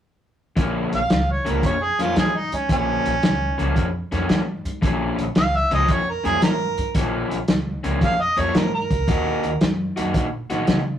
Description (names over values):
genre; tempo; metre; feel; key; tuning
electric blues shuffle; 113 BPM; 4/4; swing 68% on 8ths; Bb minor; A4 = 440 Hz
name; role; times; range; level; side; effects
crunchy overdriven guitar; riff; 0.6-10.8 s; Bb2 to Gb4; -25 LUFS; left 2 dB; none
upright bass; bass; 0.6-10.9 s; Bb1 to Db3; -27 LUFS; equal; none
vintage drum kit; drums; 0.6-10.8 s; hi-hat, kick drum, snare drum; -22 LUFS; equal; none
mellow harmonica; melody; 1.0-9.8 s; Db4 to F5; -22 LUFS; right 2 dB; overdrive
room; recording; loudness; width
moderate studio reverb, RT60 0.5 s; rough rehearsal-room recording, warm saturation; -19 LUFS; side -10 dB against mid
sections
0.6-11.0 A section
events
harmonica solo 0.6-11.0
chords
0.6 Bbm; 9.1 Ebm